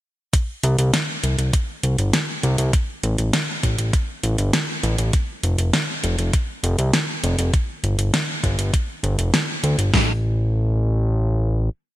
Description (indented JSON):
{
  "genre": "synthwave",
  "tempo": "100 BPM",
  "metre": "4/4",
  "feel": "straight",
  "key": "unclear",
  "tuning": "A4 = 440 Hz",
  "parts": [
    { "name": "gated 80s digital drum machine", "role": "drums", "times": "0.3-10.1 s", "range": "hi-hat, kick drum, snare drum", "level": "-19 LUFS", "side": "equal", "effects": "gated reverb, gated reverb snare" },
    { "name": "pop drum kit", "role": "drums", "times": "0.3-9.9 s", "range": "hi-hat, snare drum", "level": "-23 LUFS", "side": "equal", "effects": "none" },
    { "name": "fat analog bass", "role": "bass", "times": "0.6-11.7 s", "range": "F1 to D2", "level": "-19 LUFS", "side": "equal", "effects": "tube saturation, sidechain pumping" }
  ],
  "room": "light reverb, digital ambience",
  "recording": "bright 1980s-style digital production",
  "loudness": "-19 LUFS",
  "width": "side -15 dB against mid",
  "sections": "0.3-9.9 verse; 9.9-12.0 final chord",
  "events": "none",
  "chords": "none"
}